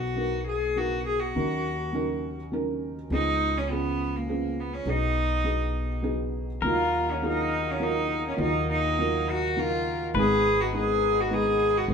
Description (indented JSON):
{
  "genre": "acoustic folk-pop ballad",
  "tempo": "102 BPM",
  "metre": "3/4",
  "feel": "straight",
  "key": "Eb minor",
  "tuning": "A4 = 440 Hz",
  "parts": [
    { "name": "rich cello", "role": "melody", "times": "0.0-11.9 s", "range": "Bb3 to Ab4", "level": "-27 LUFS", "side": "equal", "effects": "none" },
    { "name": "felt-muted upright piano", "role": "accompaniment", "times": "0.0-11.9 s", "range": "Ab1 to Cb5", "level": "-30 LUFS", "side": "right 1 dB", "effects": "none" },
    { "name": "upright bass", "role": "bass", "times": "0.0-11.9 s", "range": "Ab1 to Eb2", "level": "-32 LUFS", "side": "equal", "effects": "none" },
    { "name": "pedal steel guitar", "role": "second line", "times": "6.6-11.9 s", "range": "Bb4 to Cb5", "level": "-33 LUFS", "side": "left 6 dB", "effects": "none" },
    { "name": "pedal harmonium", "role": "sustained chords", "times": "6.6-11.9 s", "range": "Cb3 to Ab4", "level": "-36 LUFS", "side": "equal", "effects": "none" }
  ],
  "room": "wet studio reverb, RT60 0.7 s",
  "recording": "band playing live in one room",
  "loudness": "-24 LUFS",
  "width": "side -6 dB against mid",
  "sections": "0.0-6.6 A section; 6.6-11.9 B section",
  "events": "none",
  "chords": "0.0 Bmaj7; 1.3 Ebm7; 3.1 Db7; 4.9 Abm7/Cb; 6.6 Ebmadd9; 10.1 Abm"
}